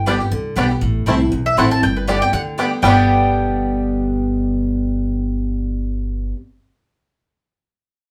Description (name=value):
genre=bluegrass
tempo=238 BPM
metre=4/4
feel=swing 54% on 8ths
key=G major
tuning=A4 = 440 Hz
part: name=mandolin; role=melody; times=0.0-6.3 s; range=B4 to A5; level=-21 LUFS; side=equal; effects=none
part: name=picked steel-string acoustic guitar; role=accompaniment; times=0.0-6.4 s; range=E2 to G4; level=-24 LUFS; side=equal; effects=none
part: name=upright bass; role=bass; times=0.0-6.3 s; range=G1 to D2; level=-23 LUFS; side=equal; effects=none
part: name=bluegrass banjo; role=melody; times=0.1-6.3 s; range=G3 to G4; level=-26 LUFS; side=equal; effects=none
part: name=mandolin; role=stabs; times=0.1-6.4 s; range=B3 to A5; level=-26 LUFS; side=equal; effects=none
room=wet studio reverb, RT60 0.5 s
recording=band playing live in one room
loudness=-18 LUFS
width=mono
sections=0.8-2.8 A section; 2.8-4.9 B section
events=none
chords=0.0 G; 0.8 Am; 1.8 G